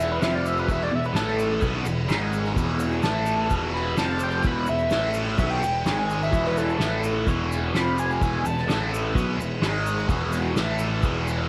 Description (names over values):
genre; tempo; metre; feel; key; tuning
psychedelic rock; 128 BPM; 4/4; straight; unclear; A4 = 440 Hz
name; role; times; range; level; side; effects
overdriven synth lead; melody; 0.0-8.9 s; A4 to B5; -29 LUFS; equal; distortion, chorus, phaser, slapback echo
bright tonewheel organ; sustained chords; 0.0-11.5 s; D#3 to C5; -38 LUFS; equal; none
biting overdriven guitar; riff; 0.0-11.5 s; E2 to B3; -29 LUFS; equal; phaser
fuzz picked electric bass; bass; 0.0-11.5 s; E1 to B1; -31 LUFS; equal; overdrive
soft-mallet drum kit; drums; 0.0-11.4 s; kick drum, ride cymbal, snare drum; -31 LUFS; equal; none
egg shaker; percussion; 0.0-11.4 s; none; -49 LUFS; equal; none
room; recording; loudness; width
light reverb, small room ambience; none; -24 LUFS; mono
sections
0.0-11.5 A section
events
analog synth lead solo 0.0-11.5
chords
0.2 F5; 0.7 E; 1.2 A5; 1.6 E; 2.1 G#5; 2.6 E; 3.0 A5; 3.5 E; 4.0 F5; 4.4 E; 4.9 A5; 5.4 E; 5.9 G#5; 6.3 E; 6.8 A5; 7.3 E; 7.7 F5; 8.2 E; 8.7 A5; 9.2 E; 9.6 G#5; 10.1 E; 10.6 A5; 11.0 E